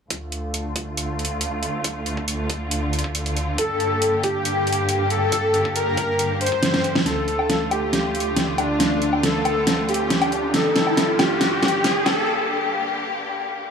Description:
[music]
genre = heavy wobble dubstep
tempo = 138 BPM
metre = 4/4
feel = half-time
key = D minor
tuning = A4 = 440 Hz
[part]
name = bright studio string section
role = sustained chords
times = 0.1-13.7 s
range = D2 to G4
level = -25 LUFS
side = left 1 dB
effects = sidechain pumping, low-pass filter
[part]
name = dubstep drum kit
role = drums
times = 0.1-12.2 s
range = hi-hat, snare drum, woodblock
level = -23 LUFS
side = equal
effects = none
[part]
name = electronic kick drum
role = drums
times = 0.1-6.6 s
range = none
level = -30 LUFS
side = equal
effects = high-pass filter on kick
[part]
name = soft supersaw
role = melody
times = 3.6-12.3 s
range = D4 to C5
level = -22 LUFS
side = equal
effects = tape echo
[part]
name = riser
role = sound effects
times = 8.6-12.3 s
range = none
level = -26 LUFS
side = right 1 dB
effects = none
[sound]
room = moderate lush hall reverb, RT60 1.8 s, digital ambience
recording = high-pass filter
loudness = -19 LUFS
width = side -6 dB against mid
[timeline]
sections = 0.1-7.1 A section; 7.1-13.7 B section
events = drum fill 6.6-7.1, 7.1-12.3; build-up 7.1-13.7; riser 8.6-12.3; break 12.3-13.7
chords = 0.1 Dm; 3.6 Gm; 7.1 Dm; 10.5 Gm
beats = | 0.10 0.54 0.97 1.41 | 1.84 2.28 2.71 3.15 | 3.58 4.02 4.45 4.89 | 5.32 5.76 6.19 6.63 | 7.06 7.50 7.93 8.37 | 8.80 9.23 9.67 10.10 | 10.54 10.97 11.41 11.84 | 12.28 12.71 13.15 13.58

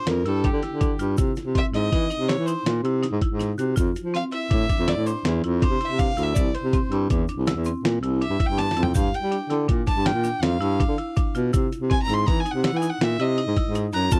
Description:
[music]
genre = progressive instrumental, band music in an uneven meter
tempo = 162 BPM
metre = 7/4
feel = straight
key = unclear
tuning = A4 = 441 Hz
[part]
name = warm violin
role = melody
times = 0.0-14.2 s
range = G4 to C6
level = -31 LUFS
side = equal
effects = none
[part]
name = marimba with hard mallets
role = arpeggios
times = 0.0-14.2 s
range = C4 to G4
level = -34 LUFS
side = equal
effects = none
[part]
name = dark baritone saxophone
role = bass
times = 0.1-14.2 s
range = C2 to G3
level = -26 LUFS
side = equal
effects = none
[part]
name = dusty soul sampler-style drum kit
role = drums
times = 0.1-14.2 s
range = hi-hat, kick drum, snare drum, toms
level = -26 LUFS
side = equal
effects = overdrive
[part]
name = egg shaker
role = percussion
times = 0.8-14.2 s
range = none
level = -46 LUFS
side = equal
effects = none
[sound]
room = little or no reverb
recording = dry, close 1970s-style studio recording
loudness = -23 LUFS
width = mono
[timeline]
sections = 0.0-14.2 A section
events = violin solo 0.0-14.2; drum fill 8.6-9.0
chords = 0.0 G7(no3); 1.2 Caug; 3.8 Fmaj7(no3); 6.4 C; 9.0 G7(no3); 11.5 Caug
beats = 0.07 0.44 0.81 | 1.18 1.55 1.93 2.29 2.67 3.04 3.40 | 3.77 4.14 4.51 4.88 5.25 5.62 5.99 | 6.36 6.73 7.10 7.47 7.84 8.21 8.58 | 8.95 9.32 9.69 10.06 10.43 10.80 11.17 | 11.54 11.91 12.28 12.65 13.02 13.38 13.75 | 14.12

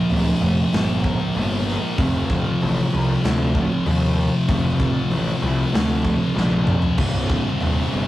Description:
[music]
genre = stoner and doom metal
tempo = 96 BPM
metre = 4/4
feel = straight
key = unclear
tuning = A4 = 441 Hz
[part]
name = thick fuzz guitar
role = riff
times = 0.0-8.1 s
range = C2 to Bb3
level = -21 LUFS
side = equal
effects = distortion
[part]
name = fuzz picked electric bass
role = bass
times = 0.1-8.1 s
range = C1 to Eb2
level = -22 LUFS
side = equal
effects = overdrive
[part]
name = big rock drum kit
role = drums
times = 0.1-7.8 s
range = crash cymbal, hi-hat, kick drum, snare drum, toms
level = -25 LUFS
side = equal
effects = none
[sound]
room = moderate studio reverb, RT60 0.6 s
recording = rough rehearsal-room recording, warm saturation, vinyl crackle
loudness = -18 LUFS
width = side -15 dB against mid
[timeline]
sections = 0.0-8.1 A section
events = drum fill 6.4-7.0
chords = 0.0 Bb5; 2.0 F5; 7.0 Cm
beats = 0.10 0.73 1.36 | 1.98 2.61 3.23 3.86 | 4.48 5.11 5.73 6.36 | 6.99 7.61

